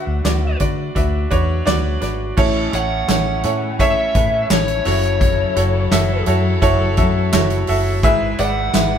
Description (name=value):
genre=piano-driven pop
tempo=85 BPM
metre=4/4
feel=straight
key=unclear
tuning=A4 = 440 Hz
part: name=lead guitar through a small cranked amp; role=melody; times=0.0-9.0 s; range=C#5 to F#5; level=-22 LUFS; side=left 2 dB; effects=overdrive, ping-pong delay
part: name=bright upright piano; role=accompaniment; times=0.0-9.0 s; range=G#2 to E5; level=-20 LUFS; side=right 1 dB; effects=none
part: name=vintage muted fingered electric bass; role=bass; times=0.1-9.0 s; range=F#1 to D3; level=-20 LUFS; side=left 1 dB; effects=none
part: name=natural country drum kit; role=drums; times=0.2-8.9 s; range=crash cymbal, handclaps, hi-hat, kick drum, snare drum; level=-20 LUFS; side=equal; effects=none
part: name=warm studio string section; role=sustained chords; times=2.4-9.0 s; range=F#3 to B4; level=-29 LUFS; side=left 3 dB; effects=none
room=moderate stone room reverb, RT60 1.1 s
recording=band playing live in one room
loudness=-15 LUFS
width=side -8 dB against mid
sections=0.0-2.4 A section; 2.4-9.0 B section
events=none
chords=0.0 Bm/D; 2.4 A; 4.9 F#m7; 8.0 E/G#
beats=0.25 0.96 1.67 | 2.38 3.08 3.79 4.50 | 5.21 5.92 6.62 7.33 | 8.04 8.74